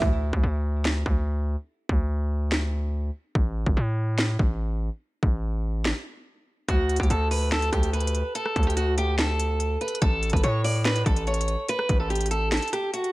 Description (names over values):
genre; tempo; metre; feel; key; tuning
hip hop, trap; 144 BPM; 4/4; half-time; D major; A4 = 440 Hz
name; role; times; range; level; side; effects
distorted 808-style bass; bass; 0.0-12.6 s; G1 to A2; -25 LUFS; equal; distortion
trap drum kit; drums; 0.0-13.1 s; handclaps, hi-hat, kick drum, rim click, snare drum; -25 LUFS; equal; vintage 12-bit sampler grit
picked old ladder-braced acoustic guitar; melody; 6.7-13.1 s; F#4 to D5; -27 LUFS; right 1 dB; low-pass filter, ping-pong delay
room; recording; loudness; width
studio reverb; none; -23 LUFS; side -19 dB against mid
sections
0.0-13.1 A section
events
break 0.0-6.7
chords
0.0 N.C.; 6.7 D5; 10.0 N.C.